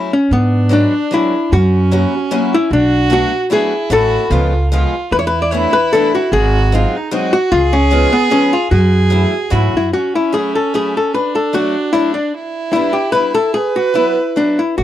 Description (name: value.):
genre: musette waltz.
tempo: 150 BPM.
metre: 3/4.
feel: swing 53% on 8ths, rubato.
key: F# minor.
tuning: A4 = 442 Hz.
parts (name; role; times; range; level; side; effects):
archtop guitar, miked and amplified; melody; 0.0-14.8 s; B3 to D5; -15 LUFS; left 2 dB; none.
rich violin; second line; 0.0-14.8 s; C#4 to B4; -19 LUFS; right 5 dB; none.
picked acoustic archtop guitar; accompaniment; 0.0-14.6 s; E3 to F#4; -20 LUFS; left 2 dB; none.
upright bass; bass; 0.3-9.9, 14.8 s; G#1 to G#2; -14 LUFS; right 1 dB; none.
room: studio reverb.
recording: dry, close 1970s-style studio recording.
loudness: -12 LUFS.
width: side -12 dB against mid.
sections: 0.3-9.9 A section; 9.9-14.8 B section.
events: none.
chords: 0.3 G#m7b5; 1.5 F#7; 2.7 Bm7; 3.9 A; 4.3 C#7; 5.1 E7sus4; 6.3 G#7; 7.5 C#7; 8.7 F#m7; 11.1 D; 12.3 G6; 13.5 Esus2.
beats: | 0.30 0.71 1.12 | 1.52 1.92 2.31 | 2.71 3.10 3.50 | 3.90 4.30 4.70 | 5.12 5.52 5.93 | 6.33 6.73 7.13 | 7.53 7.92 8.32 | 8.71 9.11 9.52 | 9.93 10.34 10.74 | 11.14 11.54 11.94 | 12.34 12.73 13.13 | 13.53 13.94 14.35 | 14.77.